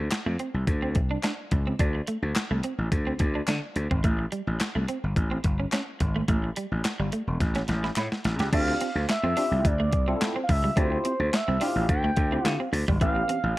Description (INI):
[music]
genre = early-eighties boogie funk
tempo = 107 BPM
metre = 4/4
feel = straight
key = D minor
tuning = A4 = 440 Hz
[part]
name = gritty slap bass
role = bass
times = 0.0-13.5 s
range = E1 to D3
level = -27 LUFS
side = equal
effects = overdrive
[part]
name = electric guitar at the edge of break-up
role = riff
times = 0.1-13.4 s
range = G3 to G4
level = -33 LUFS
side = right 2 dB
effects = wide subtle chorus
[part]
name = clean 12-bit digital drum machine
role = drums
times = 0.1-13.4 s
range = crash cymbal, handclaps, hi-hat, kick drum, snare drum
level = -27 LUFS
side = equal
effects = overdrive
[part]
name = group handclap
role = percussion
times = 0.1-8.1 s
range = none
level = -37 LUFS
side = left 2 dB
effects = none
[part]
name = expressive synth lead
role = melody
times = 8.5-13.6 s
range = C5 to G5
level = -28 LUFS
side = right 1 dB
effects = chorus
[part]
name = barky tine electric piano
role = accompaniment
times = 8.5-13.4 s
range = E3 to A4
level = -32 LUFS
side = left 2 dB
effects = ensemble chorus
[sound]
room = little or no reverb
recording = dark, warm production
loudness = -24 LUFS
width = side -17 dB against mid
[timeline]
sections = 0.0-8.5 A section; 8.5-13.6 B section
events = drum fill 7.4-8.5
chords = 0.0 D7(no3); 4.0 A7(no3); 8.5 Dm11; 13.0 A9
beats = 0.11 0.68 1.24 | 1.80 2.36 2.92 3.48 | 4.04 4.60 5.16 5.72 | 6.28 6.84 7.40 7.96 | 8.53 9.09 9.65 10.21 | 10.77 11.33 11.89 12.45 | 13.01 13.57